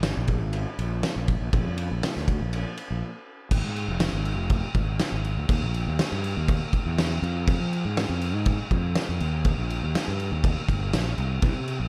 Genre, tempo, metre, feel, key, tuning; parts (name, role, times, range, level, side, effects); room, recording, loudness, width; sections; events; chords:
math rock and midwest emo; 121 BPM; 4/4; straight; Eb major; A4 = 440 Hz
fuzz fingered electric bass; bass; 0.0-11.9 s; F1 to F3; -30 LUFS; equal; overdrive
loose indie drum kit; drums; 0.0-11.8 s; crash cymbal, kick drum, ride cymbal, snare drum; -29 LUFS; equal
little or no reverb; -26 LUFS; mono
0.0-3.5 A section; 3.5-11.9 B section
break 3.0-3.5